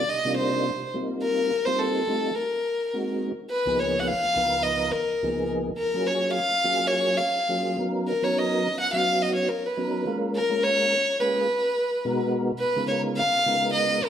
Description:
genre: jazz.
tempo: 106 BPM.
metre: 4/4.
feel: swing 55% on 16ths.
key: F mixolydian, Db mixolydian from 3.5 s.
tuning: A4 = 439 Hz.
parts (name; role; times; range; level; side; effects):
rich violin; melody; 0.0-14.1 s; A4 to Gb5; -24 LUFS; equal; none.
mellow tonewheel organ; accompaniment; 0.0-14.0 s; Db2 to Cb5; -28 LUFS; equal; chorus vibrato, slow rotary speaker.
room: wet stone room reverb, RT60 1.3 s.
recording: band playing live in one room.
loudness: -22 LUFS.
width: side -9 dB against mid.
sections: 0.0-3.5 A section; 3.5-14.1 B section.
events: none.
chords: 0.0 Cm11; 0.9 F9sus4; 2.1 F9; 2.4 Ab9; 3.5 Db13; 5.8 Gbmaj9; 7.8 Cbmaj9; 10.1 Bbm7; 11.5 Abm7/Cb; 12.6 Db13.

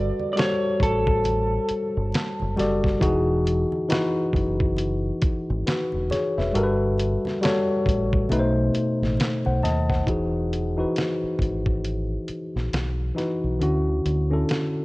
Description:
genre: R&B, neo-soul.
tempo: 68 BPM.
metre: 4/4.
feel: swing 60% on 16ths.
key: unclear.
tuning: A4 = 444 Hz.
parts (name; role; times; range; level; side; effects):
electric guitar through a small old amp; melody; 0.0-2.5 s; A4 to D5; -26 LUFS; equal; spring reverb.
tine electric piano; accompaniment; 0.0-14.8 s; B2 to A5; -24 LUFS; left 1 dB; cassette tape.
deep dub fingered electric bass; bass; 0.0-14.4 s; E1 to D#2; -26 LUFS; equal; none.
congas; percussion; 0.2-9.9 s; none; -37 LUFS; right 2 dB; none.
dusty soul sampler-style drum kit; drums; 0.4-14.7 s; hi-hat, kick drum, snare drum; -26 LUFS; equal; cassette tape.
room: light reverb.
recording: home recording on cassette.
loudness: -21 LUFS.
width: side -21 dB against mid.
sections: 0.0-10.1 A section; 10.1-14.8 B section.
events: none.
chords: 0.0 Gmaj9; 3.0 Emaj9; 6.5 Gmaj9; 8.3 B7b9; 10.1 Emaj9; 13.6 Dmaj9.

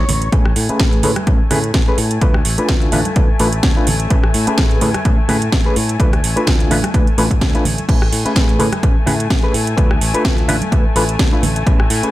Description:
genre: filtered disco house.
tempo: 127 BPM.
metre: 4/4.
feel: swing 55% on 16ths.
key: unclear.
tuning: A4 = 440 Hz.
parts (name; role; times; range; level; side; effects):
clear chamber violin section; sustained chords; 0.0-12.1 s; A3 to C#6; -25 LUFS; left 4 dB; sidechain pumping, low-pass filter.
modern bright fingered electric bass; bass; 0.0-12.1 s; A1 to A2; -21 LUFS; equal; sidechain pumping, low-pass filter.
house drum kit; drums; 0.1-12.1 s; crash cymbal, hi-hat, rim click, snare drum; -21 LUFS; right 2 dB; sidechain pumping on hats, studio reverb, sidechain pumping on cymbals.
tambourine and congas; percussion; 0.1-12.1 s; none; -24 LUFS; right 3 dB; sidechain pumping on perc, low-pass filter on perc.
overdriven reed electric piano; accompaniment; 0.3-12.1 s; A3 to B4; -20 LUFS; left 1 dB; fast tremolo, phaser, sidechain pumping, low-pass filter.
electronic kick drum; drums; 0.3-11.8 s; none; -15 LUFS; equal; studio reverb.
room: light reverb.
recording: none.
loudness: -12 LUFS.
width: side -16 dB against mid.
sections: 0.0-12.1 A section.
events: filter sweep 0.0-12.1.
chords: 0.3 Amaj9; 2.2 Dm6; 4.1 Amaj9; 6.0 Dm6; 7.9 Amaj9; 9.8 Dm6.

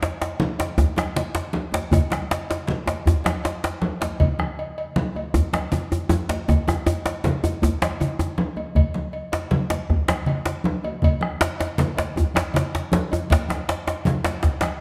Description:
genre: west african traditional, West African drum ensemble.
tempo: 106 BPM (dotted quarters).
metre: 12/8.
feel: straight.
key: none.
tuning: none.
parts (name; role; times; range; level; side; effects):
cowbell; percussion; 0.0-14.8 s; none; -35 LUFS; equal; none.
djembe; percussion; 0.0-14.8 s; none; -26 LUFS; equal; none.
congas; percussion; 0.4-14.8 s; none; -29 LUFS; equal; none.
djembe; percussion; 0.4-14.8 s; none; -31 LUFS; equal; none.
bombo; percussion; 0.8-14.8 s; none; -26 LUFS; equal; none.
room: moderate recital hall reverb, RT60 1.8 s.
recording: dark, warm production.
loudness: -23 LUFS.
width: mono.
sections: 0.0-14.8 A section.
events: none.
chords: none.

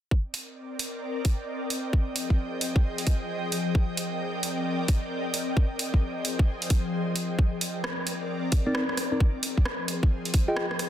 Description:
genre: UK garage, two-step garage.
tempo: 132 BPM.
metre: 4/4.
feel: swing 63% on 16ths.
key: C minor.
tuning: A4 = 439 Hz.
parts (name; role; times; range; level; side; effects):
ethereal airy pad; sustained chords; 0.6-10.9 s; F3 to G5; -31 LUFS; left 1 dB; ensemble chorus, built-in reverb, sidechain pumping.
electronic kick drum; drums; 0.1-10.5 s; none; -22 LUFS; equal; none.
house drum kit; drums; 0.3-10.9 s; hi-hat, rim click; -31 LUFS; right 1 dB; overdrive.
mellow tine electric piano; stabs; 8.7-10.6 s; C4 to G5; -28 LUFS; equal; phaser, digital delay.
room: little or no reverb.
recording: dense, heavily limited modern master.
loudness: -25 LUFS.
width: side -11 dB against mid.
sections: 0.1-10.9 A section.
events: none.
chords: 0.1 Cm9; 1.9 Fm9; 3.7 Cm9; 5.6 Fm9; 7.4 Cm9; 9.2 Fm9.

